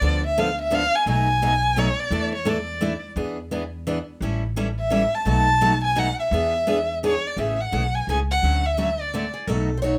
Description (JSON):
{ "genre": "acoustic string swing (jazz manouche)", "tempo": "171 BPM", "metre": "3/4", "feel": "swing 60% on 8ths", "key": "A major", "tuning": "A4 = 440 Hz", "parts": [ { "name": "dark violin", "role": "melody", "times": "0.0-9.3 s", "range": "C#5 to A5", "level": "-25 LUFS", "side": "equal", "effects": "none" }, { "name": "picked steel-string acoustic guitar", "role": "accompaniment", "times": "0.0-9.9 s", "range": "B2 to A4", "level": "-28 LUFS", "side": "equal", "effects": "none" }, { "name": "upright bass", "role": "bass", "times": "0.0-10.0 s", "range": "A1 to E2", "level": "-28 LUFS", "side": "equal", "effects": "none" }, { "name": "picked steel-string acoustic guitar", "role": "second line", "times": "9.3-10.0 s", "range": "G#4 to C#5", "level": "-30 LUFS", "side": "equal", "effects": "none" } ], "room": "light reverb", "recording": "none", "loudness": "-23 LUFS", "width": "mono", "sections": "0.0-7.4 A section; 7.4-10.0 B section", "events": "none", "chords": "0.0 Dm6; 1.1 B7; 2.1 E7sus4; 3.2 E7; 4.2 A7; 5.3 B7; 6.3 E7; 7.4 Amaj7; 8.4 Dmaj7; 9.5 B7" }